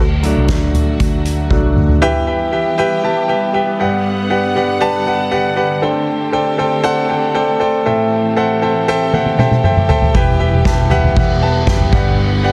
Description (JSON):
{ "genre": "piano-driven pop", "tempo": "118 BPM", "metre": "4/4", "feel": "straight", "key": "unclear", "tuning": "A4 = 443 Hz", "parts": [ { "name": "warm studio string section", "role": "sustained chords", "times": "0.0-12.5 s", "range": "D3 to F#5", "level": "-25 LUFS", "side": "equal", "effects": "none" }, { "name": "vintage muted picked electric bass", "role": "bass", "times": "0.0-2.0, 10.1-12.5 s", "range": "E1 to D2", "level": "-18 LUFS", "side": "equal", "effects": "none" }, { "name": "clear concert grand piano", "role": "accompaniment", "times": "0.2-12.5 s", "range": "G2 to A5", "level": "-17 LUFS", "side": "equal", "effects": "none" }, { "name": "soft-mallet drum kit", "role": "drums", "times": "0.2-2.0, 9.1-12.5 s", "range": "hi-hat, kick drum, ride cymbal, snare drum, toms", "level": "-18 LUFS", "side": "equal", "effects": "none" } ], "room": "light reverb, small room reverb", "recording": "dense, heavily limited modern master", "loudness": "-15 LUFS", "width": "mono", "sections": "0.0-2.0 A section; 2.0-12.5 B section", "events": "grand piano solo 0.0-2.0; drum fill 1.5-2.0, 9.1-10.2", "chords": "0.0 D; 2.0 Em; 3.8 Gmaj7; 5.8 D7sus4; 7.9 Am7; 10.2 Em; 11.9 Gmaj7" }